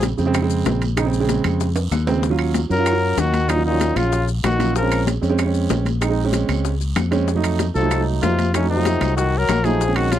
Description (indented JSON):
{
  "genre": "Afro-Cuban jazz",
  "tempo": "190 BPM",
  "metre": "4/4",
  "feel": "straight",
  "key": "Bb minor",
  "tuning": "A4 = 440 Hz",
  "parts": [
    { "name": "warm trumpet", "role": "melody", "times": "0.0, 2.7-5.1, 7.8-10.2 s", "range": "Db4 to Bb4", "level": "-22 LUFS", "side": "left 1 dB", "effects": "none" },
    { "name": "clear trombone", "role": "second line", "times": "0.0, 2.7-5.0, 7.8-10.2 s", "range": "A2 to Gb3", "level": "-26 LUFS", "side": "left 11 dB", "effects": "none" },
    { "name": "warm grand piano", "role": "accompaniment", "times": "0.0-10.2 s", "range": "Db3 to F4", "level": "-22 LUFS", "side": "right 6 dB", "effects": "none" },
    { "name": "fingered electric bass", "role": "bass", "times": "0.0-10.2 s", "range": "Bb1 to Gb2", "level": "-21 LUFS", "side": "left 1 dB", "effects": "none" },
    { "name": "bongos", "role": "percussion", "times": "0.0-10.2 s", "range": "none", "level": "-28 LUFS", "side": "left 11 dB", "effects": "none" },
    { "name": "congas", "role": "percussion", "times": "0.0-10.2 s", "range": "none", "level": "-28 LUFS", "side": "left 4 dB", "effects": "none" },
    { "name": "guiro", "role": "percussion", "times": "0.0-10.2 s", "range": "none", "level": "-38 LUFS", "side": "right 10 dB", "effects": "none" },
    { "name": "maracas", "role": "percussion", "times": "0.0-10.2 s", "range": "none", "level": "-36 LUFS", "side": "left 20 dB", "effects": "none" },
    { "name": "timbales", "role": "percussion", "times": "0.0-10.2 s", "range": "none", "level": "-28 LUFS", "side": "right 5 dB", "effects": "none" },
    { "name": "claves", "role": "percussion", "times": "0.3-10.1 s", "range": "none", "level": "-33 LUFS", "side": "right 15 dB", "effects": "none" }
  ],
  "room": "little or no reverb",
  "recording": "dry, close 1970s-style studio recording",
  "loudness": "-17 LUFS",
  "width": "side -11 dB against mid",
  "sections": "0.0-10.2 A section",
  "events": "drum fill 1.8-2.2",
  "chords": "0.0 Bbm7; 2.2 Ebm7; 4.8 Bbm7; 7.3 F7b9",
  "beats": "0.03 0.34 0.66 | 0.97 1.29 1.60 1.92 | 2.23 2.55 2.86 3.18 | 3.49 3.81 4.12 4.44 | 4.75 5.07 5.38 5.70 | 6.02 6.33 6.65 6.96 | 7.28 7.59 7.91 8.22 | 8.54 8.86 9.17 9.49 | 9.80 10.12"
}